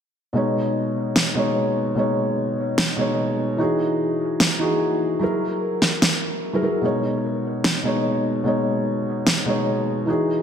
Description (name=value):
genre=future bass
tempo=148 BPM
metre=4/4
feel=swing 56% on 16ths, half-time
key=B major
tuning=A4 = 440 Hz
part: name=felt-muted upright piano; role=accompaniment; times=0.3-10.4 s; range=B2 to C#5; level=-21 LUFS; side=equal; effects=dub echo
part: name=electronic snare drum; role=drums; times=1.2-9.4 s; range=none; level=-21 LUFS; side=right 1 dB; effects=small room ambience
room=wet lush hall reverb, RT60 1.7 s, studio ambience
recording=dense, heavily limited modern master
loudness=-19 LUFS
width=side -8 dB against mid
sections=0.3-10.4 A section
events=none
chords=0.3 B69; 3.6 Emaj9; 5.2 F#9; 6.8 B69